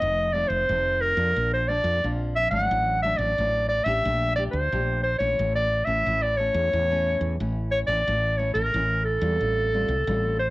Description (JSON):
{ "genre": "samba and choro", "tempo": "90 BPM", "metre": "4/4", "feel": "straight", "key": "unclear", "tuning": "A4 = 440 Hz", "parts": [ { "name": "clear clarinet", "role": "melody", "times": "0.0-10.5 s", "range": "A4 to F#5", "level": "-23 LUFS", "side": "equal", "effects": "none" }, { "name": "nylon-string guitar", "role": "accompaniment", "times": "0.0-10.5 s", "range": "F2 to G4", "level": "-33 LUFS", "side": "left 1 dB", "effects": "cassette tape" }, { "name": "woody fretless electric bass", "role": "bass", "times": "0.0-10.5 s", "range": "F1 to F2", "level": "-27 LUFS", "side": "equal", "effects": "wide subtle chorus" } ], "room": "moderate studio reverb, RT60 0.5 s", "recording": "home recording on cassette", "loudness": "-22 LUFS", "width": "side -20 dB against mid", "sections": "0.0-10.5 A section", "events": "none", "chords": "0.0 F7; 1.4 Bb; 2.7 D/A; 4.0 Gmadd9/Bb; 5.4 A; 9.4 Fadd9/A", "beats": "| 0.01 0.69 1.36 2.03 | 2.70 3.38 4.05 4.72 | 5.39 6.06 6.73 7.40 | 8.07 8.74 9.41 10.08" }